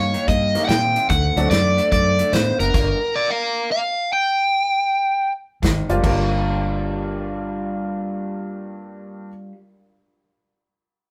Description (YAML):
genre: electric blues shuffle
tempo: 146 BPM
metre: 4/4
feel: swing 65% on 8ths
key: G minor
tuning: A4 = 440 Hz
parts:
  - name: crunchy overdriven guitar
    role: melody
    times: 0.0-5.3 s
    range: Bb4 to G5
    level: -21 LUFS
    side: equal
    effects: none
  - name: electric guitar through a small old amp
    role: riff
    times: 0.0-3.0, 5.6-9.6 s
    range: G2 to Bb4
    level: -29 LUFS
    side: equal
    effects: spring reverb
  - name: vintage muted fingered electric bass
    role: bass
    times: 0.0-2.9, 5.6-9.2 s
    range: F#1 to Bb2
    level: -25 LUFS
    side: equal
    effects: none
  - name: natural country drum kit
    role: drums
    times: 0.1-2.9, 5.6-6.2 s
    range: crash cymbal, hi-hat, kick drum, snare drum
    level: -25 LUFS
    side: equal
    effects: none
  - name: bright upright piano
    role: accompaniment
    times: 0.6-1.5, 5.9-9.3 s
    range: G2 to F4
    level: -29 LUFS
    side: equal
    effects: none
room: moderate studio reverb, RT60 0.8 s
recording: band playing live in one room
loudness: -20 LUFS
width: mono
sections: 0.0-6.0 A section; 6.0-9.3 B section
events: stop 2.7-5.6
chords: 0.0 Eb7; 1.1 D; 2.7 Gm7; 5.6 Ab5; 6.0 Gm7